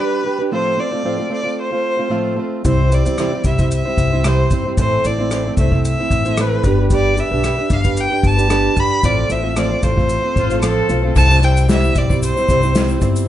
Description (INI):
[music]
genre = acoustic pop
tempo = 113 BPM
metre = 4/4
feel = swing 55% on 16ths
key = C major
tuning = A4 = 440 Hz
[part]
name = warm violin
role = melody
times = 0.0-13.0 s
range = B4 to B5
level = -20 LUFS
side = left 1 dB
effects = none
[part]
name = fingerpicked plugged-in steel-string acoustic guitar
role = accompaniment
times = 0.0-13.3 s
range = A2 to C5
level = -20 LUFS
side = right 3 dB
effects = none
[part]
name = upright bass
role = bass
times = 2.6-13.2 s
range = G1 to E2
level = -18 LUFS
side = left 1 dB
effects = none
[part]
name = unplugged drum kit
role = drums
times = 2.6-13.3 s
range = crash cymbal, kick drum, rim click, shaker, snare drum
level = -20 LUFS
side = left 1 dB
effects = none
[part]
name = warm cello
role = second line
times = 10.4-11.1 s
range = F4 to A4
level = -22 LUFS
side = equal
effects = none
[part]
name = egg shaker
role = percussion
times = 11.2-13.3 s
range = none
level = -36 LUFS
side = left 7 dB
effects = none
[sound]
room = moderate studio reverb, RT60 0.7 s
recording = heard from further back in the room, nothing above 10.9 kHz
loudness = -14 LUFS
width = side -12 dB against mid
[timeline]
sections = 0.0-11.2 A section; 11.2-13.3 B section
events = none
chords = 0.0 G; 0.5 F/A; 2.6 C; 4.8 Am; 6.6 G; 9.0 F/A; 11.2 C